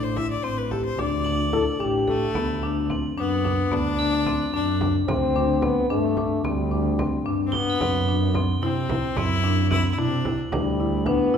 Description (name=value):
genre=contemporary instrumental, chamber music in an uneven meter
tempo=220 BPM (eighths)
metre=5/8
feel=straight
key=unclear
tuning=A4 = 440 Hz
part: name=clear violin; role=melody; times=0.0-4.9, 7.5-10.4 s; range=A3 to E5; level=-28 LUFS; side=left 4 dB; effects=none
part: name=marimba with medium hard mallets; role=arpeggios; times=0.0-11.4 s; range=B3 to A4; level=-26 LUFS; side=left 6 dB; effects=none
part: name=dark double bass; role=bass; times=0.0-11.4 s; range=A1 to C3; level=-26 LUFS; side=right 4 dB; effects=none
part: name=frame drum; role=percussion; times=0.2-11.3 s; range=none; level=-33 LUFS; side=right 2 dB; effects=none
part: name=crotales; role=texture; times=1.2-5.3, 7.5-10.8 s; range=F#7 to B7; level=-35 LUFS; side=right 4 dB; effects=none
part: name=warm French horn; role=second line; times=1.5-2.3, 5.1-7.3, 10.5-11.4 s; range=G3 to A4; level=-24 LUFS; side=left 2 dB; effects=none
room=wet recital hall reverb, RT60 1.4 s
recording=minimal, uncompressed stereo recording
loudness=-21 LUFS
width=side -7 dB against mid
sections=0.0-2.4 A section; 2.4-11.4 B section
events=none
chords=0.0 Am7; 1.0 Dsus4; 2.4 Bm/D; 5.1 C5/D; 7.8 Cmaj9#11/F#; 10.5 Em7/D